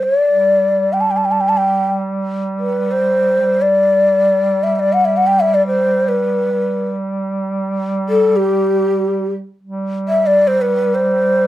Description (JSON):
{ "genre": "Persian modal ensemble", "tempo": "free time", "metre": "none", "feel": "none", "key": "G dastgah mahur", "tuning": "A4 = 436 Hz", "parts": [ { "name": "breathy mellow ney", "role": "melody", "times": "0.0-11.5 s", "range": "G4 to A5", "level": "-13 LUFS", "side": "left 1 dB", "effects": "none" }, { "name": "warm duduk", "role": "drone", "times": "0.0-11.5 s", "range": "G3", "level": "-21 LUFS", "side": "right 2 dB", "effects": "none" } ], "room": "moderate studio reverb, RT60 0.5 s", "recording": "close, detailed microphones", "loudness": "-13 LUFS", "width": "side -14 dB against mid", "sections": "0.0-9.6 A section; 9.6-11.5 A section", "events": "none", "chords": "none" }